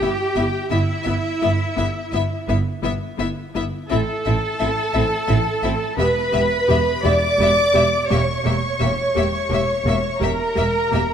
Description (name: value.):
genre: classical, slow romantic movement for string orchestra.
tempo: 57 BPM (dotted quarters).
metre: 12/8.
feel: rubato.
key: E minor.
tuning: A4 = 438 Hz.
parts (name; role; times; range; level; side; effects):
rich studio violin section; melody; 0.0-11.0 s; E5; -28 LUFS; left 7 dB; none.
rich studio violin section; second line; 0.0-11.1 s; E5 to D6; -27 LUFS; left 4 dB; none.
clear studio viola section; accompaniment; 0.0-11.0 s; Bb3 to G4; -26 LUFS; left 3 dB; none.
rich studio double bass section; bass; 0.0-11.0 s; E1 to A1; -23 LUFS; right 2 dB; none.
warm studio cello section; bass; 0.0-11.1 s; E4 to D5; -21 LUFS; right 1 dB; none.
room: moderate scoring stage reverb, RT60 2.1 s.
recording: none.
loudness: -17 LUFS.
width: side -8 dB against mid.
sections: 0.0-11.1 A section.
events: none.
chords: 0.0 Em/G; 3.9 Am; 6.0 Em; 8.1 Edim7.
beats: 0.71 1.77 2.83 | 3.91 4.94 5.98 7.04 | 8.10 9.15 10.22.